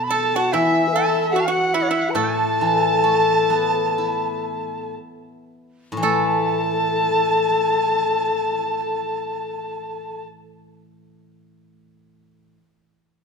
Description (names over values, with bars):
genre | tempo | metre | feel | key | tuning
chinese traditional, Chinese chamber ensemble | 54-79 BPM | 4/4 | rubato | unclear | A4 = 440 Hz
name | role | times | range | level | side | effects
large dizi | melody | 0.0-10.2 s | C#5 to B5 | -23 LUFS | right 5 dB | none
steel-string zither | accompaniment | 0.0-12.6 s | A2 to E4 | -26 LUFS | left 3 dB | none
breathy mellow low xiao | second line | 0.1-10.2 s | E4 to B4 | -23 LUFS | left 5 dB | none
clear horsehead fiddle | second line | 0.1-10.2 s | E5 to A5 | -25 LUFS | left 1 dB | none
pipa | second line | 0.1-10.2 s | E4 to A4 | -26 LUFS | right 8 dB | none
room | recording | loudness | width
moderate recital hall reverb, RT60 1.7 s | none | -18 LUFS | side -5 dB against mid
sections
0.0-6.0 A section; 6.0-10.4 B section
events
slowing down 0.0-6.0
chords
none